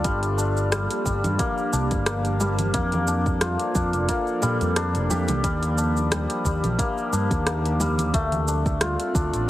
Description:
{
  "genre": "organic downtempo",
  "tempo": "89 BPM",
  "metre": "4/4",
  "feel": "swing 55% on 16ths",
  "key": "G minor",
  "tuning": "A4 = 442 Hz",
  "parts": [
    { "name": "warbly tape-like pad", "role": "sustained chords", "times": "0.0-9.5 s", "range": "Eb3 to Eb6", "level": "-31 LUFS", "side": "right 1 dB", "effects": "chorus, built-in reverb, phaser, sidechain pumping" },
    { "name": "santur", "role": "arpeggios", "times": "0.0-9.5 s", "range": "G3 to G4", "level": "-26 LUFS", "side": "left 2 dB", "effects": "digital delay" },
    { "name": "fretless electric bass", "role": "bass", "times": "0.0-9.5 s", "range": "F1 to Bb2", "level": "-25 LUFS", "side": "equal", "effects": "none" },
    { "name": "afro-pop drum kit", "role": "drums", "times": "0.0-9.5 s", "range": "hi-hat, rim click, shaker", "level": "-28 LUFS", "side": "right 1 dB", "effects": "none" },
    { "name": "electronic kick drum", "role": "drums", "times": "0.0-9.3 s", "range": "none", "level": "-27 LUFS", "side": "equal", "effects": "none" },
    { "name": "congas", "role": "percussion", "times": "0.7-9.5 s", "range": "none", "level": "-33 LUFS", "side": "equal", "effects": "none" }
  ],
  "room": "light reverb",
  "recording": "heavily compressed radio sound, multiband compression",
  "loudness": "-21 LUFS",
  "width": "side -14 dB against mid",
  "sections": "0.0-9.5 A section",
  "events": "none",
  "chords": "0.0 Gm7; 2.7 Bbmaj7/F; 5.4 Ebadd9; 8.1 D7sus4"
}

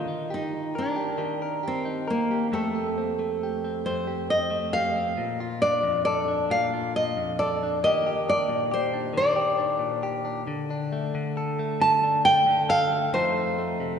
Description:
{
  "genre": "acoustic folk-pop ballad",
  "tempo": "45 BPM (dotted quarters)",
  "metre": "6/8",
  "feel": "straight",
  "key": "Bb major",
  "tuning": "A4 = 441 Hz",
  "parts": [
    { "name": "nylon-string guitar", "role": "melody", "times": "0.0-14.0 s", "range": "A3 to A5", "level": "-24 LUFS", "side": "equal", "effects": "none" },
    { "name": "direct-recorded clean electric guitar", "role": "accompaniment", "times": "0.0-14.0 s", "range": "F2 to Bb4", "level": "-29 LUFS", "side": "left 1 dB", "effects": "none" }
  ],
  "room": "wet church reverb, RT60 3.1 s",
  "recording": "recorded in a church or concert hall, nothing above 10.8 kHz",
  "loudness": "-23 LUFS",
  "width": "side -7 dB against mid",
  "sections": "0.0-5.2 A section; 5.2-14.0 B section",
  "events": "none",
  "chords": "0.0 Eb; 2.5 Fadd9; 5.2 Bbmaj7; 7.8 Ebmaj7; 10.5 D5; 13.1 F7"
}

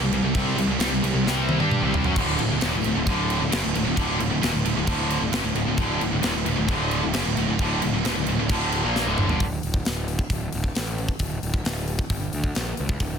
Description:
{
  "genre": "heavy metal",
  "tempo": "133 BPM",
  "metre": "4/4",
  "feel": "straight",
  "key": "D phrygian dominant",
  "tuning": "A4 = 440 Hz",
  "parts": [
    { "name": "heavy high-gain guitar", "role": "riff", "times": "0.0-9.4 s", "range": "D2 to G4", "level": "-28 LUFS", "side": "left 1 dB", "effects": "distortion" },
    { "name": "scooped high-gain guitar", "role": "riff", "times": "0.0-9.4 s", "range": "D2 to G4", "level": "-27 LUFS", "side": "right 14 dB", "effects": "distortion" },
    { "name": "tight distorted guitar", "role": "riff", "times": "0.0-9.4 s", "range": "D2 to G4", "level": "-28 LUFS", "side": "left 11 dB", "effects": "distortion" },
    { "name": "fuzz picked electric bass", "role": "bass", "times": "0.0-13.2 s", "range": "D1 to G2", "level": "-28 LUFS", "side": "equal", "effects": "overdrive" },
    { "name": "tight metal drum kit", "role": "drums", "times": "0.1-13.1 s", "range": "crash cymbal, hi-hat, kick drum, snare drum, toms", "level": "-26 LUFS", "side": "equal", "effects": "none" }
  ],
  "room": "little or no reverb",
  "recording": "dense, heavily limited modern master",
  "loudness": "-21 LUFS",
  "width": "side -7 dB against mid",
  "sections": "0.0-9.4 A section; 9.4-13.2 B section",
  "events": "drum fill 1.3-2.2, 8.9-9.4",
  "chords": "0.0 C5; 2.2 D; 9.4 D5; 12.1 G5; 12.6 Bbm"
}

